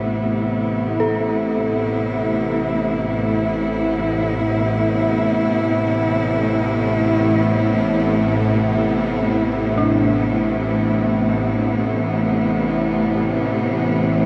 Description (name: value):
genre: dark ambient drone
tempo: free time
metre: none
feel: none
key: unclear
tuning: A4 = 436 Hz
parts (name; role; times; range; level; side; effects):
- rich chamber cello section; sustained chords; 0.0-14.3 s; C3 to E4; -22 LUFS; equal; none
- dark detuned synth bell; arpeggios; 0.0-14.3 s; D4 to A4; -30 LUFS; equal; chorus, analog delay
- bowed-like drone; drone; 0.0-14.3 s; A1 to A2; -23 LUFS; equal; built-in reverb
room: wet plate reverb, RT60 3.1 s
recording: dreamy mix soaked in reverb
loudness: -19 LUFS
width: mono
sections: 0.0-14.3 A section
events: none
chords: 0.0 Amadd9